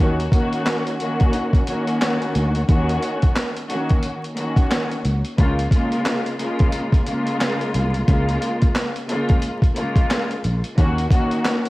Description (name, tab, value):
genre	hip hop, boom-bap hip-hop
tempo	89 BPM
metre	4/4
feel	swing 61% on 16ths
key	Eb minor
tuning	A4 = 442 Hz
part	warm studio string section	accompaniment	0.0-11.7 s	Db3 to Gb4	-22 LUFS	left 1 dB	high-pass filter, low-pass filter, cassette tape
part	fingered electric bass	bass	0.0-11.1 s	Bb1 to Eb2	-20 LUFS	equal	transformer saturation
part	boom bap sampler-style drum kit	drums	0.2-11.7 s	handclaps, hi-hat, kick drum, snare drum	-19 LUFS	equal	none
room	little or no reverb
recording	home recording on cassette, vinyl crackle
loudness	-18 LUFS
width	side -19 dB against mid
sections	0.0-11.7 A section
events	none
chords	0.0 Ebm7; 5.4 Db6; 10.8 Ebm7